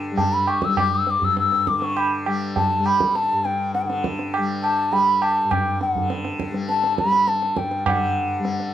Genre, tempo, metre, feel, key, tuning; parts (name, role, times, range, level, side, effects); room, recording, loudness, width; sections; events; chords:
indian classical, Hindustani; 102 BPM; 4/4; straight; G raga yaman; A4 = 442 Hz
tanpura; drone; 0.0-8.7 s; G2 to G3; -27 LUFS; left 3 dB
bansuri; melody; 0.2-8.7 s; F#5 to E6; -20 LUFS; left 1 dB
tabla; percussion; 0.2-8.7 s; -25 LUFS; right 4 dB
light reverb; -19 LUFS; side -11 dB against mid
0.0-7.9 A section